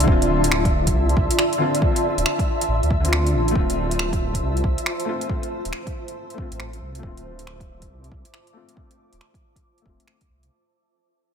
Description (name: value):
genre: future garage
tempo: 138 BPM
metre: 4/4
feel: swing 64% on 16ths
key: D minor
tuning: A4 = 440 Hz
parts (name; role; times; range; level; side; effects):
- felt-muted upright piano; accompaniment; 0.0-10.5 s; D3 to F4; -28 LUFS; left 4 dB; vintage 12-bit sampler grit, sidechain pumping, low-pass filter, ping-pong delay
- granular cloud pad; sustained chords; 0.0-10.5 s; F4 to D6; -25 LUFS; equal; built-in reverb, sidechain pumping
- swelling detuned saw bass; bass; 0.0-10.5 s; D1 to D2; -23 LUFS; equal; sidechain pumping
- deep house drum kit; drums; 0.0-10.5 s; finger snaps, hi-hat; -26 LUFS; right 1 dB; overdrive
- flickering grainy texture; texture; 0.0-10.5 s; E5; -31 LUFS; right 2 dB; built-in reverb
- electronic kick drum; drums; 0.1-10.3 s; none; -23 LUFS; equal; overdrive
room: light reverb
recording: none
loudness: -19 LUFS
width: side -7 dB against mid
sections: 0.0-10.5 A section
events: fade-out 0.0-10.5; filter sweep on felt piano 0.0-10.5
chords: 0.0 Dm7